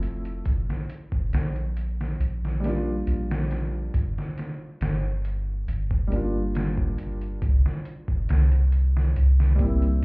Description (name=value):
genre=trip hop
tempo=69 BPM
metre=4/4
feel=straight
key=G dorian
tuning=A4 = 441 Hz
part: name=felt-muted upright piano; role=accompaniment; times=0.0-10.0 s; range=F3 to F4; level=-31 LUFS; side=equal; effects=tremolo, low-pass filter, tape echo
part: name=soft 808-style bass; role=bass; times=0.0-10.0 s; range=F1 to C2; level=-23 LUFS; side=equal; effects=none
part: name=trip hop sampler-style drum kit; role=drums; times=0.0-10.0 s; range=hi-hat, kick drum, snare drum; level=-28 LUFS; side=equal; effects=overdrive, studio reverb
room=digital ambience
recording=heard muffled through a wall, club reverb, EQ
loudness=-22 LUFS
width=side -30 dB against mid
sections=0.0-10.0 A section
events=none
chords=0.5 Bb6; 3.9 Gm7; 7.4 C7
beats=| 0.46 1.33 2.20 3.07 | 3.94 4.80 5.67 6.54 | 7.41 8.28 9.15 10.02